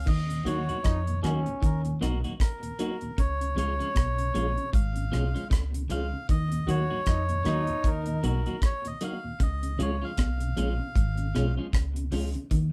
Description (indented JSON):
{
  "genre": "roots reggae",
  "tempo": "77 BPM",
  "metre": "4/4",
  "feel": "swing 58% on 16ths",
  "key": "Eb minor",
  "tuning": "A4 = 440 Hz",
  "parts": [
    { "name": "melodica", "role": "melody", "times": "0.0-11.5 s", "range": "Bb4 to F5", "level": "-36 LUFS", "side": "equal", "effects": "none" },
    { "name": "vintage muted fingered electric bass", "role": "bass", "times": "0.0-12.7 s", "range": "Ab1 to F2", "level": "-32 LUFS", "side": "equal", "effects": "none" },
    { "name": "electric guitar at the edge of break-up", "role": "riff", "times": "0.1-12.7 s", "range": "Ab2 to F3", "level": "-39 LUFS", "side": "equal", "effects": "spring reverb, dub echo" },
    { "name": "deep reggae drum kit", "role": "drums", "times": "0.1-12.7 s", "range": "crash cymbal, hi-hat, kick drum, rim click", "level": "-29 LUFS", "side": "equal", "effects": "none" },
    { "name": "mellow tonewheel organ", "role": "accompaniment", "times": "0.3-12.4 s", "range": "Eb2 to Gb4", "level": "-39 LUFS", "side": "equal", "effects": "chorus vibrato, slow rotary speaker" },
    { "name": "growling trombone", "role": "second line", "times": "0.5-2.0, 6.7-8.2 s", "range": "Db4 to Gb4", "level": "-37 LUFS", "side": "equal", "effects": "none" },
    { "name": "clean electric guitar", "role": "accompaniment", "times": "0.5-12.3 s", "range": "F3 to Gb4", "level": "-37 LUFS", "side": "equal", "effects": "none" }
  ],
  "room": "moderate small room ambience, RT60 0.5 s",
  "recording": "band playing live in one room",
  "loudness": "-28 LUFS",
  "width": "mono",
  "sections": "0.1-12.7 A section",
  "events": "none",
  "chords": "0.1 Ebm; 3.2 Db; 6.3 Ebm; 9.4 Db",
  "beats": "| 0.07 0.84 1.62 2.40 | 3.18 3.96 4.73 5.51 | 6.29 7.07 7.85 8.62 | 9.40 10.18 10.96 11.73 | 12.51"
}